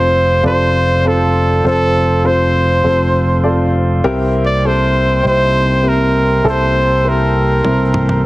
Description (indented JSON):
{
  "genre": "piano-driven pop",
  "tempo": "100 BPM",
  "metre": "4/4",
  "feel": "straight",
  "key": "C mixolydian",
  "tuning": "A4 = 440 Hz",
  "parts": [
    { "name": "clear trumpet", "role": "melody", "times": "0.0-8.3 s", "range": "A4 to D5", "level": "-15 LUFS", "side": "equal", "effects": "none" },
    { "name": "dark upright piano", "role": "accompaniment", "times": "0.0-8.3 s", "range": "C3 to D5", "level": "-17 LUFS", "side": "left 1 dB", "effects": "none" },
    { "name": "glass harmonica", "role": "sustained chords", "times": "0.0-8.3 s", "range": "Bb3 to C6", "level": "-25 LUFS", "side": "right 1 dB", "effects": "none" },
    { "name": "picked electric bass", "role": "bass", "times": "0.0-8.3 s", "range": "F1 to C2", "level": "-15 LUFS", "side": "equal", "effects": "none" },
    { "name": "toms", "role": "drums", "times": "7.6-8.2 s", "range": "none", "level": "-21 LUFS", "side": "right 1 dB", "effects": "none" }
  ],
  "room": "light reverb, small room ambience",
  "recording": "heavily compressed radio sound, multiband compression",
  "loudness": "-11 LUFS",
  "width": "side -19 dB against mid",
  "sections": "0.0-8.3 A section",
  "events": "drum fill 7.6-8.3",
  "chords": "0.0 F; 4.0 C7",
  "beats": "0.45 1.05 | 1.65 2.25 2.85 3.45 | 4.05 4.65 5.25 5.84 | 6.44 7.04 7.64 8.24"
}